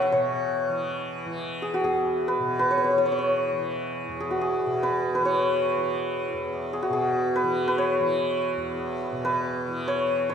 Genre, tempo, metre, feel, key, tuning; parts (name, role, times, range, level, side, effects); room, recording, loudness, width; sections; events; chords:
indian classical, Hindustani; 141 BPM; 3/4; straight; E raga bhupali; A4 = 443 Hz
santur; melody; 0.0-10.3 s; F#4 to E6; -24 LUFS; equal
tanpura; drone; 0.0-10.3 s; E2 to E3; -31 LUFS; equal
wet scoring stage reverb, RT60 1.6 s; recorded in a church or concert hall; -23 LUFS; side -7 dB against mid
0.1-10.3 A section